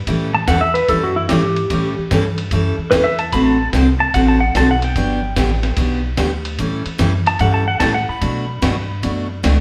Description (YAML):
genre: country, western swing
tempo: 147 BPM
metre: 4/4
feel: swing 67% on 8ths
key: unclear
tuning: A4 = 441 Hz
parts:
  - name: upright bass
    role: bass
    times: 0.0-9.6 s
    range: G1 to B2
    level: -22 LUFS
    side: equal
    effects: none
  - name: picked steel-string acoustic guitar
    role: accompaniment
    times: 0.1-9.6 s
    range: B2 to A4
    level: -22 LUFS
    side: equal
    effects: none
  - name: lo-fi sampler-style drum kit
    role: drums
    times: 0.1-9.6 s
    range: hi-hat, kick drum, ride cymbal, snare drum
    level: -26 LUFS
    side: equal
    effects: none
  - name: pedal steel guitar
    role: second line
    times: 0.3-9.3 s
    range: E4 to B5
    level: -21 LUFS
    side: equal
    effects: none
room: wet stone room reverb, RT60 1.3 s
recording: band playing live in one room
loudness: -17 LUFS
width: mono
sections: 0.0-9.6 A section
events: pedal steel guitar solo 0.0-9.6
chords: 0.1 A7; 3.3 D7/A; 5.0 Gmaj7; 6.6 A7; 8.2 Bm7